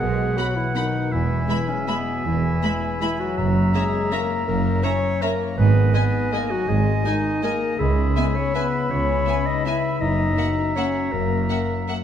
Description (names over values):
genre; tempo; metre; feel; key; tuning
classical, orchestral ballroom waltz; 162 BPM; 3/4; uneven beats, rubato; unclear; A4 = 440 Hz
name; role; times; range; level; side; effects
clear oboe; second line; 0.0-11.9 s; D#5 to F#5; -31 LUFS; right 2 dB; none
mellow hollow silver concert flute; second line; 0.0-11.9 s; F#5 to B5; -31 LUFS; left 2 dB; none
warm clarinet; second line; 0.0-11.9 s; B3 to E5; -28 LUFS; left 1 dB; none
warm French horn section; sustained chords; 0.0-11.9 s; B2 to E4; -28 LUFS; left 3 dB; none
concert harp; arpeggios; 0.0-12.0 s; E2 to C#5; -27 LUFS; left 6 dB; none
rich studio double bass section; bass; 0.0-11.4 s; E1 to C#2; -26 LUFS; right 3 dB; none
warm studio cello section; bass; 0.0-11.4 s; C#2 to B2; -26 LUFS; right 3 dB; none
rich studio violin section; melody; 0.4-12.0 s; F#5 to B5; -33 LUFS; left 3 dB; none
warm studio violin section; second line; 0.4-12.0 s; D#5 to F#5; -36 LUFS; equal; none
warm studio viola section; accompaniment; 0.4-12.0 s; G#3 to C#4; -33 LUFS; right 2 dB; none
timpani; percussion; 3.4-3.9 s; F#2; -40 LUFS; equal; none
room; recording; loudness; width
wet recital hall reverb, RT60 1.6 s; none; -19 LUFS; side -9 dB against mid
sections
0.0-12.0 A section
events
none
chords
0.0 B; 1.1 E; 3.4 F#7; 5.6 G#m; 7.8 C#m7; 10.0 F#7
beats
| 0.00 0.37 0.76 | 1.12 1.49 1.88 | 2.26 2.63 3.02 | 3.38 3.75 4.12 | 4.48 4.85 5.23 | 5.58 5.94 6.32 | 6.68 7.05 7.43 | 7.79 8.16 8.55 | 8.90 9.27 9.65 | 10.01 10.38 10.76 | 11.12 11.50 11.88